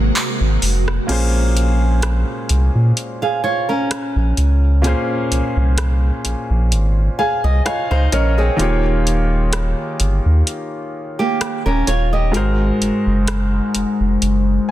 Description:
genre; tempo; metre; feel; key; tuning
contemporary R&B; 64 BPM; 4/4; swing 54% on 16ths; Bb minor; A4 = 440 Hz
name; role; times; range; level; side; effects
clear concert grand piano; accompaniment; 0.0-14.7 s; Ab2 to Ab5; -21 LUFS; left 2 dB; none
ethereal airy pad; sustained chords; 0.0-1.1 s; C3 to Gb4; -26 LUFS; right 2 dB; ensemble chorus, built-in reverb
warm sub bass; bass; 0.0-14.6 s; Eb1 to Bb2; -16 LUFS; equal; none
booming analog drum machine; drums; 0.2-14.5 s; crash cymbal, handclaps, hi-hat, rim click; -24 LUFS; equal; none
flamenco guitar; arpeggios; 3.2-12.6 s; Bb3 to F5; -21 LUFS; right 3 dB; ping-pong delay
room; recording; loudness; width
digital ambience; dense, heavily limited modern master; -15 LUFS; side -14 dB against mid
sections
0.0-1.1 A section; 1.1-14.7 B section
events
break 0.0-1.1; kick muted 1.1-14.7; grand piano fill 6.7-8.6, 14.2-14.7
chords
0.0 Ab9; 1.1 Bbm9; 8.6 Eb7; 12.3 Ab9

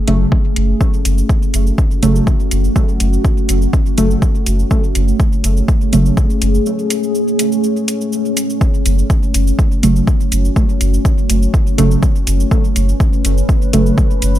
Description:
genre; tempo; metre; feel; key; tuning
dub techno; 123 BPM; 4/4; straight; F# minor; A4 = 440 Hz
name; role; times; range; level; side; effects
deep dark ambient pad; sustained chords; 0.0-14.4 s; A3 to B4; -20 LUFS; equal; chorus, built-in reverb, sidechain pumping
deep mellow chord stab; stabs; 0.1-6.1, 9.8-13.9 s; C#3 to A3; -18 LUFS; right 2 dB; chorus, phaser, dub echo
soft dub sub bass; bass; 0.1-14.4 s; F#1; -15 LUFS; equal; sidechain pumping
electronic hi-hat and cabasa; drums; 0.1-14.4 s; none; -23 LUFS; equal; overdrive, small room reverb
electronic kick drum; drums; 0.3-14.1 s; none; -15 LUFS; equal; overdrive, small room reverb
room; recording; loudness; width
light reverb; none; -12 LUFS; side -12 dB against mid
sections
0.0-14.4 A section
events
break 6.7-8.6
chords
0.0 F#m

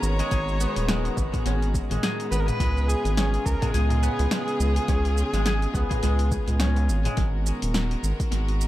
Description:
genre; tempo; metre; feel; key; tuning
organic downtempo; 105 BPM; 4/4; swing 58% on 16ths; G# dorian; A4 = 440 Hz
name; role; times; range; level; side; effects
clear kamancheh; melody; 0.0-6.6 s; G#4 to C#5; -31 LUFS; equal; tape echo
rich studio string section; sustained chords; 0.0-8.7 s; C#3 to A#5; -32 LUFS; equal; sidechain pumping
guzheng; arpeggios; 0.0-8.7 s; G#3 to G#4; -32 LUFS; left 3 dB; tape echo
round analog bass; bass; 0.0-8.7 s; D#1 to C#2; -24 LUFS; equal; sidechain pumping
deep house drum kit; drums; 0.0-8.7 s; hi-hat, shaker, snare drum; -30 LUFS; equal; overdrive, tape echo
darbuka; percussion; 0.0-7.2 s; none; -36 LUFS; left 1 dB; none
electronic kick drum; drums; 0.3-8.3 s; none; -27 LUFS; equal; overdrive
room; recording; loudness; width
light reverb, small room ambience; echo-heavy mix; -22 LUFS; side -15 dB against mid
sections
0.0-7.2 A section; 7.2-8.7 A section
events
none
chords
0.0 G#m9; 2.6 C#7; 7.2 G#m9

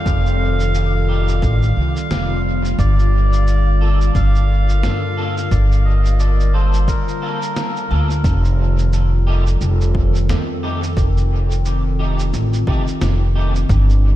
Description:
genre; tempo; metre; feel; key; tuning
ambient dub; 88 BPM; 4/4; swing 58% on 16ths; unclear; A4 = 440 Hz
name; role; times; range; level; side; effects
melodica; melody; 0.0-7.9 s; Bb4 to F5; -26 LUFS; equal; vintage 12-bit sampler grit, dub echo
warbly tape-like pad; sustained chords; 0.0-14.2 s; D3 to Bb4; -24 LUFS; left 1 dB; chorus, built-in reverb
upright bass; bass; 0.0-14.2 s; F1 to G2; -16 LUFS; equal; none
wind-like tuned noise texture; texture; 0.0-8.3 s; F5; -37 LUFS; right 2 dB; none
electronic kick drum; drums; 0.1-13.9 s; none; -20 LUFS; equal; overdrive
electronic shaker and snare drum; drums; 0.1-14.0 s; none; -30 LUFS; right 1 dB; dub echo
electric guitar at the edge of break-up; stabs; 1.1-13.5 s; A3 to A4; -30 LUFS; equal; ensemble chorus, dub echo
room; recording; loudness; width
light reverb, digital ambience; none; -14 LUFS; side -14 dB against mid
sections
0.0-8.2 A section; 8.2-14.2 B section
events
none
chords
0.0 F9; 2.8 Gm7; 8.2 F9

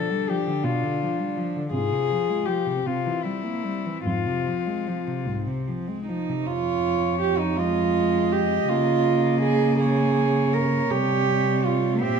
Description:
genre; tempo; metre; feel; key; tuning
classical, lyrical piece for cello ensemble; 49-56 BPM (dotted quarters); 6/8; rubato; F minor; A4 = 441 Hz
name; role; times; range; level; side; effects
warm cello; melody; 0.0-12.2 s; E4 to E5; -28 LUFS; left 10 dB; none
dark cello; second line; 0.0-12.2 s; C4 to Bb4; -26 LUFS; right 9 dB; none
warm cello; accompaniment; 0.0-12.2 s; Ab2 to C4; -28 LUFS; left 3 dB; none
dark cello; bass; 0.0-12.2 s; C2 to Db3; -27 LUFS; right 2 dB; none
room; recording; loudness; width
moderate recital hall reverb, RT60 1.5 s; dark, warm production; -21 LUFS; side -6 dB against mid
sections
0.0-6.5 A section; 6.5-12.2 A section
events
none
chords
0.0 G7/B; 1.7 Fm/Ab; 2.9 C7; 4.1 Fm; 8.7 Bbm/Db; 10.9 C5

